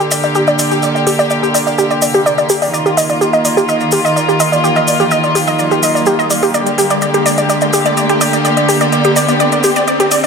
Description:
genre	melodic techno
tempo	126 BPM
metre	4/4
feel	straight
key	G minor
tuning	A4 = 444 Hz
part	warm studio string section	sustained chords	0.0-10.3 s	D3 to G4	-15 LUFS	equal	none
part	wide unison pluck	arpeggios	0.0-10.3 s	G4 to Eb5	-14 LUFS	equal	dub echo
part	cabasa	percussion	0.0-10.3 s	none	-22 LUFS	equal	none
part	riser	sound effects	0.5-10.3 s	none	-22 LUFS	equal	none
part	electronic hi-hat	drums	0.1-10.3 s	none	-23 LUFS	left 1 dB	none
room	moderate lush hall reverb, RT60 1.9 s, studio reverb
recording	none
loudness	-10 LUFS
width	side -5 dB against mid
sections	0.0-10.3 A section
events	build-up 0.0-10.3; filter sweep on synth arpeggio sound 0.0-10.3; riser 0.5-10.3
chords	0.0 Gm; 2.7 Ebsus2; 6.5 Gm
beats	0.35 | 0.83 1.30 1.78 2.26 | 2.73 3.21 3.69 4.16 | 4.64 5.11 5.59 6.07 | 6.54 7.02 7.50 7.97 | 8.45 8.92 9.40 9.88

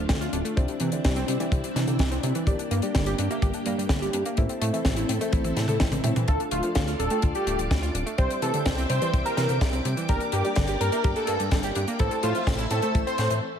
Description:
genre	italo disco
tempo	126 BPM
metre	4/4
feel	straight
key	D minor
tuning	A4 = 440 Hz
part	string machine, full ensemble	sustained chords	0.0-13.4 s	A3 to E6	-33 LUFS	equal	ensemble chorus
part	analog pluck	arpeggios	0.0-13.4 s	C3 to A4	-32 LUFS	right 2 dB	chorus, cassette tape, ping-pong delay
part	dark grand piano	stabs	0.0-13.4 s	A3 to G5	-35 LUFS	left 5 dB	low-pass filter, ping-pong delay
part	chorused synth bass	bass	0.0-13.4 s	D1 to C3	-29 LUFS	equal	none
part	kick drum	drums	0.1-13.0 s	none	-25 LUFS	equal	none
part	tight funk drum kit	drums	0.1-13.4 s	hi-hat, snare drum, toms	-30 LUFS	left 1 dB	high-pass filter on hats, high-pass filter on toms, high-pass filter on snare, high-pass filter on room, gated reverb
part	wide unison lead	melody	6.3-13.3 s	F4 to C5	-28 LUFS	right 1 dB	tape echo
room	light reverb, studio ambience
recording	none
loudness	-22 LUFS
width	side -8 dB against mid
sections	0.0-6.3 A section; 6.3-13.6 B section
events	drum fill 5.3-6.3; filter sweep on grand piano 6.3-13.6; stop 13.4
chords	0.0 Dm; 0.6 Cadd9; 2.5 Gm; 4.4 Am; 6.3 Dm; 8.2 Cadd9; 10.1 Gm; 12.0 Am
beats	0.09 | 0.57 1.04 1.52 2.00 | 2.47 2.95 3.42 3.90 | 4.38 4.85 5.33 5.80 | 6.28 6.76 7.23 7.71 | 8.19 8.66 9.14 9.61 | 10.09 10.57 11.04 11.52 | 11.99 12.47 12.95

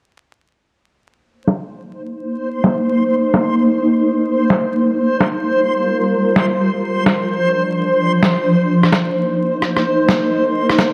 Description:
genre	future garage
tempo	129 BPM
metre	4/4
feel	swing 62% on 16ths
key	unclear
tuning	A4 = 440 Hz
part	granular cloud pad	sustained chords	2.0-10.9 s	F3 to C5	-18 LUFS	equal	built-in reverb, vintage 12-bit sampler grit
part	backwards swelling texture	texture	2.4-10.9 s	C5	-23 LUFS	equal	built-in reverb
part	electronic snare drum and rim click	drums	1.5-10.9 s	none	-20 LUFS	equal	low-pass filter on snare, small room reverb
room	wet lush hall reverb, RT60 1.8 s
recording	vinyl crackle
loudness	-16 LUFS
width	mono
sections	1.0-10.9 A section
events	filter sweep on drum 1.0-10.9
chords	1.0 Cm7; 4.7 Gm7; 6.6 Dm7; 8.5 Cm7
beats	| 1.01 1.48 1.94 2.40 | 2.87 3.33 3.80 4.27 | 4.73 5.20 5.66 6.13 | 6.59 7.06 7.52 7.99 | 8.45 8.92 9.38 9.85 | 10.31 10.78

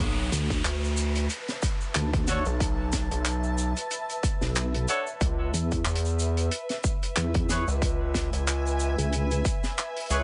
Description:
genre	glitch hop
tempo	92 BPM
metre	4/4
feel	swing 56% on 16ths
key	B dorian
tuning	A4 = 440 Hz
part	gritty driven synth bass	bass	0.0-10.2 s	B1 to E2	-29 LUFS	equal	none
part	downlifter	sound effects	0.0-5.2 s	none	-41 LUFS	equal	none
part	granular cloud pad	texture	0.8-10.2 s	B4 to A5	-38 LUFS	equal	built-in reverb, sidechain pumping
part	vowel-sweep wobble bass	bass	0.3-9.4 s	B1 to E2	-29 LUFS	equal	chorus, tube saturation
part	warm soul drum kit	drums	0.3-10.2 s	handclaps, hi-hat, snare drum	-34 LUFS	equal	none
part	egg shaker	percussion	0.3-10.2 s	none	-39 LUFS	equal	none
part	electronic kick drum	drums	0.5-9.6 s	none	-31 LUFS	equal	overdrive
part	mellow horn section	stabs	2.3-10.2 s	D4 to C#5	-34 LUFS	equal	sidechain pumping, digital delay
room	small room reverb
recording	nothing above 10.3 kHz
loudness	-27 LUFS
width	mono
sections	0.0-10.2 A section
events	drop 0.0-10.2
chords	0.0 Bm7; 5.2 C#m7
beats	| 0.00 0.65 1.30 1.95 | 2.60 3.26 3.91 4.56 | 5.21 5.87 6.52 7.17 | 7.82 8.47 9.13 9.78

